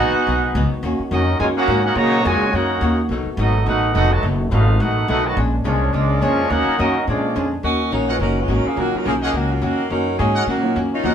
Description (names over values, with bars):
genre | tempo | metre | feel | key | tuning
jazz | 212 BPM | 4/4 | swing 59% on 8ths | Eb minor | A4 = 440 Hz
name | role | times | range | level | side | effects
warm trumpet section | melody | 0.0-7.5 s | Ab3 to Bb5 | -22 LUFS | equal | none
brilliant trombone section | second line | 0.0-7.5 s | Bb2 to Gb4 | -22 LUFS | right 2 dB | none
archtop guitar, miked and amplified | accompaniment | 0.0-11.1 s | Ab2 to Gb4 | -24 LUFS | left 2 dB | none
warm trombone section | sustained chords | 0.0-7.6 s | D3 to Gb4 | -29 LUFS | left 2 dB | none
upright bass | bass | 0.0-11.1 s | F1 to Bb2 | -21 LUFS | equal | none
warm saxophone section | melody | 7.6-11.1 s | Eb3 to Eb5 | -21 LUFS | equal | none
clear trumpet section | stabs | 8.1-11.1 s | Bb4 to Gb5 | -25 LUFS | equal | none
warm concert grand piano | accompaniment | 8.8-11.1 s | F3 to F4 | -25 LUFS | right 4 dB | none
room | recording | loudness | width
wet studio reverb, RT60 0.7 s | band playing live in one room | -16 LUFS | side -8 dB against mid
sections
0.0-7.6 A section; 7.6-11.1 B section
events
none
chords
0.0 Abm7; 0.8 Ebm7; 3.1 B7; 5.4 Bb7#9; 6.5 Ebm7; 7.1 Bb7#9; 7.6 Ebm7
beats
0.26 0.55 | 0.83 1.11 1.40 1.68 | 1.97 2.25 2.53 2.82 | 3.10 3.38 3.67 3.95 | 4.24 4.52 4.80 5.08 | 5.37 5.65 5.93 6.21 | 6.50 6.78 7.06 7.35 | 7.63 7.91 8.20 8.48 | 8.77 9.05 9.33 9.62 | 9.90 10.19 10.47 10.75 | 11.04